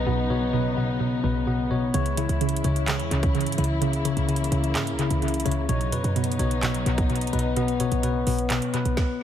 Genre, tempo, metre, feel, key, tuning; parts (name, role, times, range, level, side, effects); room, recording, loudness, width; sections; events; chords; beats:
hip hop, trap; 128 BPM; 4/4; half-time; B major; A4 = 440 Hz
mallet-like synth pluck; accompaniment; 0.0-9.2 s; B2 to C#3; -27 LUFS; right 1 dB; chorus, phaser, low-pass filter, dub echo
dark symphonic string section; sustained chords; 0.0-8.9 s; C#3 to E4; -32 LUFS; equal
bell-like tine electric piano; arpeggios; 0.0-9.2 s; C#3 to C#5; -27 LUFS; left 5 dB; medium stereo tremolo, low-pass filter, dub echo
short 808-style bass; bass; 0.0-9.0 s; B1 to G#2; -28 LUFS; right 1 dB
trap drum kit; drums; 1.9-9.1 s; handclaps, hi-hat, kick drum, snare drum; -29 LUFS; right 1 dB; dub echo
light reverb; echo-heavy mix; -22 LUFS; side -10 dB against mid
0.0-9.2 A section
0.0 Badd9; 1.9 C#m; 5.7 Badd9
| 0.07 0.53 1.00 1.47 | 1.94 2.41 2.88 3.35 | 3.82 4.28 4.75 5.22 | 5.69 6.16 6.63 7.10 | 7.57 8.03 8.50 8.97